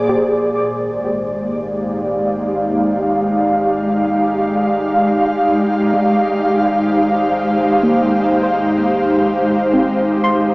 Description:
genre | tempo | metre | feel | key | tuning
ambient | 63 BPM | 3/4 | straight | unclear | A4 = 441 Hz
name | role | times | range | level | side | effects
ethereal airy pad | sustained chords | 0.0-10.5 s | Ab3 to F5 | -14 LUFS | equal | ensemble chorus, built-in reverb
soft round pluck | arpeggios | 0.0-10.5 s | Ab3 to D6 | -22 LUFS | equal | chorus, diffuse ambient delay
warm sub bass | bass | 0.1-10.5 s | Ab1 | -36 LUFS | equal | none
room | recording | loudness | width
wet plate reverb, RT60 3.9 s | dreamy mix soaked in reverb, cassette tape, small speaker sound | -14 LUFS | side -25 dB against mid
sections
0.1-10.5 A section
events
none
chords
0.1 Ebmaj7/Ab

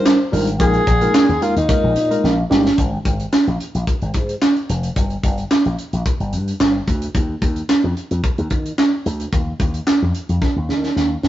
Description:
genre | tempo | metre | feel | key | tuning
early-eighties boogie funk | 110 BPM | 4/4 | straight | unclear | A4 = 440 Hz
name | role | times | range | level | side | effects
breathy alto saxophone | melody | 0.0-2.5 s | Eb4 to C5 | -19 LUFS | left 2 dB | none
tine electric piano | accompaniment | 0.0-2.7 s | G3 to Bb4 | -21 LUFS | equal | medium stereo tremolo
tight funk drum kit | drums | 0.1-11.3 s | handclaps, hi-hat, kick drum, snare drum | -17 LUFS | right 1 dB | none
slap bass with an envelope filter | bass | 0.3-11.3 s | F1 to Eb3 | -21 LUFS | left 1 dB | none
room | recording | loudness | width
moderate stone room reverb, RT60 1.2 s | rough rehearsal-room recording, nothing above 7.6 kHz | -16 LUFS | side -13 dB against mid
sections
0.0-2.8 A section; 2.8-11.3 B section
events
drum fill 2.2-2.8, 10.4-11.3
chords
0.0 Ebmaj9; 0.6 Bb7sus4; 2.8 N.C.

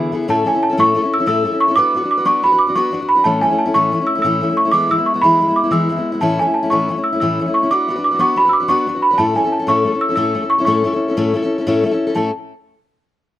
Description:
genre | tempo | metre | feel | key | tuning
celtic folk, Celtic slip jig | 121 BPM (dotted quarters) | 9/8 | straight | A major | A4 = 439 Hz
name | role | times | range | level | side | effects
picked steel-string acoustic guitar | accompaniment | 0.0-12.3 s | A2 to B4 | -18 LUFS | left 2 dB | none
worn celesta | melody | 0.3-12.3 s | G#5 to E6 | -15 LUFS | right 1 dB | none
room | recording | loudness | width
little or no reverb | recorded outdoors, with no room sound | -13 LUFS | side -13 dB against mid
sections
0.3-12.2 A section; 12.2-13.4 B section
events
none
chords
0.3 A; 1.8 Bm; 3.2 A; 4.7 E; 6.2 A; 7.7 Bm; 9.2 A

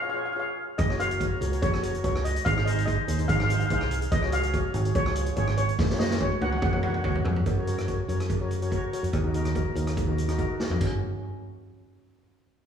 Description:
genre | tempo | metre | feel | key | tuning
calypso | 144 BPM | 4/4 | straight | F# major | A4 = 441 Hz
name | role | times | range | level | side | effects
steel pan | melody | 0.0-7.2 s | C#5 to F#5 | -30 LUFS | left 1 dB | none
steel pan | accompaniment | 0.0-11.0 s | C#4 to C#5 | -33 LUFS | left 3 dB | none
fingered electric bass | bass | 0.8-11.0 s | F#1 to F#2 | -28 LUFS | right 1 dB | none
street-band drum kit | drums | 0.8-10.9 s | crash cymbal, hi-hat, kick drum, rim click, snare drum, toms | -29 LUFS | right 1 dB | none
cowbell | percussion | 0.8-11.0 s | none | -38 LUFS | right 4 dB | none
room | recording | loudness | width
wet recital hall reverb, RT60 1.6 s | recorded in a church or concert hall, small room ambience | -24 LUFS | side -8 dB against mid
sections
0.0-7.5 A section; 7.5-10.8 B section; 10.8-12.5 C section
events
drum fill 5.8-7.5, 10.6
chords
0.0 C#; 0.8 F#maj7; 2.5 G#; 4.1 C#sus4; 5.0 C#; 5.8 F#; 9.1 D#m; 10.8 F#

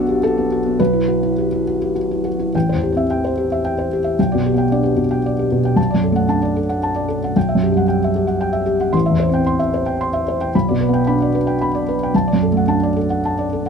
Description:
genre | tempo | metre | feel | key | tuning
neoclassical minimalist piano | 101-115 BPM | 3/4 | rubato | A dorian | A4 = 440 Hz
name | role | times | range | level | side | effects
felt-muted upright piano | solo | 0.0-13.7 s | A1 to C6 | -15 LUFS | equal | none
room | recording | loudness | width
moderate studio ambience, RT60 0.5 s | none | -15 LUFS | side -6 dB against mid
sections
0.0-2.5 A section; 2.5-13.7 B section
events
none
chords
0.0 Bm7; 0.8 Emadd9/B; 2.5 Am7; 4.2 G/B; 5.8 Bm7; 7.4 Emadd9/B; 8.9 Am7; 10.5 G/B; 12.1 Bm7

